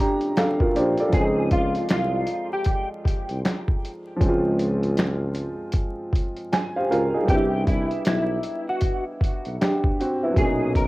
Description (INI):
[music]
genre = lo-fi hip hop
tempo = 78 BPM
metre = 4/4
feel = swing 61% on 16ths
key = unclear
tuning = A4 = 441 Hz
[part]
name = warm upright piano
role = accompaniment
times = 0.0-10.9 s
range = A#2 to Bb5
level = -25 LUFS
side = equal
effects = low-pass filter, cassette tape
[part]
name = dusty soul sampler-style drum kit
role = drums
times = 0.0-10.9 s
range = finger snaps, hi-hat, kick drum, snare drum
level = -23 LUFS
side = equal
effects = vintage 12-bit sampler grit, cassette tape
[part]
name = mellow tuba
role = bass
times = 0.8-10.9 s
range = Bb1 to Db2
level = -26 LUFS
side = equal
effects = transformer saturation
[part]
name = clean electric guitar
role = melody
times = 1.1-10.9 s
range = E4 to A#4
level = -27 LUFS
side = equal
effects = ensemble chorus, low-pass filter, cassette tape, tape echo
[sound]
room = light reverb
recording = home recording on cassette, vinyl crackle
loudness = -21 LUFS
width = side -19 dB against mid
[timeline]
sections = 0.0-1.1 A section; 1.1-10.9 B section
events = upright piano fill 0.0-1.1, 6.1-7.3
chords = 0.0 Bbmaj9; 1.1 Dbmaj9; 7.3 Cmaj9; 10.4 Bmaj9